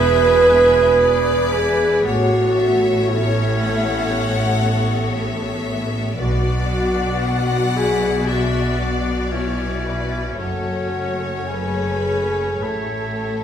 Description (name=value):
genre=cinematic, emotional film score for orchestra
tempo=58 BPM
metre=4/4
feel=rubato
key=A major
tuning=A4 = 440 Hz
part: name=warm studio violin section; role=melody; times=0.0-13.4 s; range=B4 to D5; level=-28 LUFS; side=left 4 dB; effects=none
part: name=mellow hollow concert flute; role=second line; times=0.0-13.4 s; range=E5 to B5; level=-31 LUFS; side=left 1 dB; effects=none
part: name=rich studio violin section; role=second line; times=0.0-13.4 s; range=A4 to F#5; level=-29 LUFS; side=left 6 dB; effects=none
part: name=warm oboe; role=second line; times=0.0-13.4 s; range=C#4 to G#4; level=-28 LUFS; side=equal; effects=none
part: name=clear studio viola section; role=accompaniment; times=0.0-13.4 s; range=A3 to B4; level=-28 LUFS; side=left 1 dB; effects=none
part: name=mellow French horn section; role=sustained chords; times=0.0-13.4 s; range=E4 to B4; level=-19 LUFS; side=right 2 dB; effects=none
part: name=rich studio cello section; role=bass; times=0.0-13.4 s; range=E2 to B2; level=-26 LUFS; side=equal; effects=none
part: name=rich studio double bass section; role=bass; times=0.0-13.4 s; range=E1 to B1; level=-24 LUFS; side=right 1 dB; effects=none
room=wet recital hall reverb, RT60 1.5 s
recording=recorded in a church or concert hall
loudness=-16 LUFS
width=side -9 dB against mid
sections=0.0-13.4 A section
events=none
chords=0.0 E; 2.0 Aadd9; 6.2 Bm; 10.4 F#madd9; 12.6 A